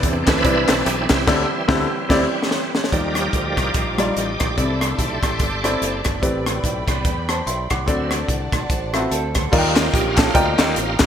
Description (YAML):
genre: uptempo gospel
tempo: 146 BPM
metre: 4/4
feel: swing 58% on 8ths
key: unclear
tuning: A4 = 441 Hz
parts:
  - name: warm baby grand piano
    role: accompaniment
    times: 0.0-10.8 s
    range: A2 to D6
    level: -22 LUFS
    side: left 1 dB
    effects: none
  - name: bright tonewheel organ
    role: sustained chords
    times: 0.0-11.1 s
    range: E3 to F5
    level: -24 LUFS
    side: right 2 dB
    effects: slow rotary speaker, chorus vibrato
  - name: modern bright fingered electric bass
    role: bass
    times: 0.0-11.1 s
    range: F#1 to E2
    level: -26 LUFS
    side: equal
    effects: none
  - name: crisp fusion drum kit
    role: drums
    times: 0.0-11.1 s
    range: crash cymbal, hi-hat, kick drum, rim click, snare drum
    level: -20 LUFS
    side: equal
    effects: none
  - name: group handclap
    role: percussion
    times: 0.3-1.2, 9.8-11.1 s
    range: none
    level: -29 LUFS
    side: left 6 dB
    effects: none
  - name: warm studio string section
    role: sustained chords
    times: 2.9-9.5 s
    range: Eb4 to D6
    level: -31 LUFS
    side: equal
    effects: none
  - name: clean electric guitar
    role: second line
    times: 8.7-11.0 s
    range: G4 to C5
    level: -27 LUFS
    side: right 6 dB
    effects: wide subtle chorus, digital delay
room: moderate lush hall reverb, RT60 1.9 s, small room ambience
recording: bright 1980s-style digital production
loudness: -17 LUFS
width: side -9 dB against mid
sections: 0.0-2.9 A section; 2.9-9.5 B section; 9.5-11.1 A section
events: tonewheel organ solo 0.0-2.9, 2.9-9.5; band accent 1.3-2.9; drum fill 2.1-2.9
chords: 0.0 Cmaj9; 1.3 D9sus4; 2.9 Ebmaj9; 4.6 C69; 6.2 Am11; 7.9 D7; 9.5 Ebmaj9